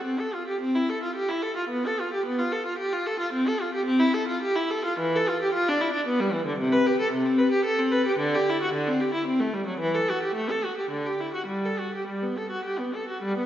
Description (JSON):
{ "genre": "classical, baroque-style suite movement for unaccompanied viola", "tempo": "97-114 BPM", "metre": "3/4", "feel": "rubato", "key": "C major, G major from 6.6 s", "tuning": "A4 = 440 Hz", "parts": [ { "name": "clear viola", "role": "solo", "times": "0.0-13.5 s", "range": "C3 to B4", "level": "-23 LUFS", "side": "equal", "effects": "none" } ], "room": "wet recital hall reverb, RT60 1.6 s", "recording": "heard from further back in the room, nothing above 7.5 kHz", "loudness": "-23 LUFS", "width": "side -11 dB against mid", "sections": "0.0-13.2 A section", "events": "none", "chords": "none" }